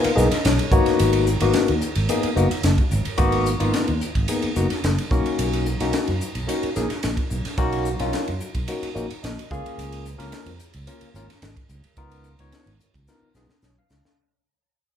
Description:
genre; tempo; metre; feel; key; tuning
electric jazz fusion; 109 BPM; 4/4; straight; Db mixolydian; A4 = 440 Hz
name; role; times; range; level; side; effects
barky tine electric piano; accompaniment; 0.0-14.2 s; Bb3 to F5; -23 LUFS; left 3 dB; phaser
crisp fusion drum kit; drums; 0.0-14.2 s; hi-hat, kick drum, ride cymbal, snare drum; -26 LUFS; equal; none
sustaining fretless electric bass; bass; 0.1-14.1 s; Gb1 to Gb2; -24 LUFS; right 1 dB; none
room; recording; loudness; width
moderate large studio reverb, RT60 1.3 s; band playing live in one room; -19 LUFS; side -9 dB against mid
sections
0.0-14.2 A section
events
fade-out 0.0-14.2; tine electric piano fill 0.0-1.0, 9.0-9.8, 13.4-14.2; drum fill 13.1-14.2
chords
0.0 Db13; 0.7 Abm9; 5.1 Cbmaj9; 9.5 Bbm7/Db; 12.0 Db13

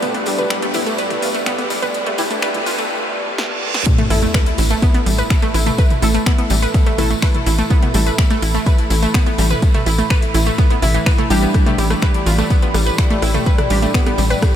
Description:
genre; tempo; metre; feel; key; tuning
melodic techno; 125 BPM; 4/4; straight; unclear; A4 = 440 Hz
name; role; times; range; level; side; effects
dark analog pad; sustained chords; 0.0-14.6 s; A2 to B5; -26 LUFS; equal; chorus, phaser, sidechain pumping
wide unison pluck; arpeggios; 0.0-14.4 s; E3 to B4; -21 LUFS; equal; sidechain pumping, ping-pong delay
analog drone; drone; 5.3-14.6 s; A2 to E3; -30 LUFS; left 1 dB; none
deep house drum kit; drums; 0.0-14.5 s; finger snaps, hi-hat, rim click, snare drum, toms; -25 LUFS; equal; overdrive, studio reverb
tambourine; percussion; 0.0-14.5 s; none; -30 LUFS; left 4 dB; none
riser, reverse cymbal and sub drop; sound effects; 0.5-5.8 s; none; -27 LUFS; right 1 dB; none
deep dark ambient pad; texture; 0.0-2.9, 13.4-14.6 s; A3 to B4; -32 LUFS; right 3 dB; none
synth brass stab; stabs; 0.3-14.6 s; G3 to A4; -25 LUFS; equal; chorus, sidechain pumping, ping-pong delay
electronic kick drum; drums; 3.9-14.5 s; none; -14 LUFS; equal; overdrive, studio reverb
tight sequencer bass; bass; 4.1-14.3 s; A1; -17 LUFS; equal; sidechain pumping
room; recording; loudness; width
moderate huge ambient reverb, RT60 8.2 s; dreamy mix soaked in reverb, high-pass filter; -14 LUFS; side -10 dB against mid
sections
0.0-3.9 A section; 3.9-14.6 B section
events
build-up 0.0-3.9; filter sweep 0.0-3.9; reverse cymbal 2.9-3.9; drum fill 3.4-3.9; drop 3.9-14.6; impact 3.9-5.8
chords
0.0 G/A; 3.9 Asus2; 11.5 G/A

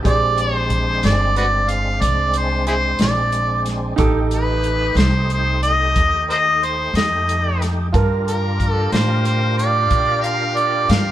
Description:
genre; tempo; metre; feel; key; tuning
slow blues; 61 BPM (dotted quarters); 12/8; straight; F mixolydian; A4 = 440 Hz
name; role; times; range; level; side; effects
bright upright piano; accompaniment; 0.0-11.1 s; Eb4 to D6; -26 LUFS; right 6 dB; none
overdriven tonewheel organ; sustained chords; 0.0-11.1 s; Ab3 to Bb4; -27 LUFS; equal; chorus vibrato, slow rotary speaker
overdriven harmonica; melody; 0.1-11.1 s; E4 to F5; -19 LUFS; equal; none
upright bass; bass; 0.1-11.1 s; G1 to Bb2; -20 LUFS; equal; none
warm soul drum kit; drums; 0.1-11.1 s; hi-hat, kick drum, snare drum; -21 LUFS; equal; none
warm horn section; sustained chords; 7.9-11.1 s; G4 to G5; -28 LUFS; left 2 dB; none
room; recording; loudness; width
moderate stone room reverb, RT60 1.0 s; band playing live in one room; -16 LUFS; side -12 dB against mid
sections
0.0-11.1 A section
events
none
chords
0.0 Bb13; 4.0 F13; 7.9 Gm7

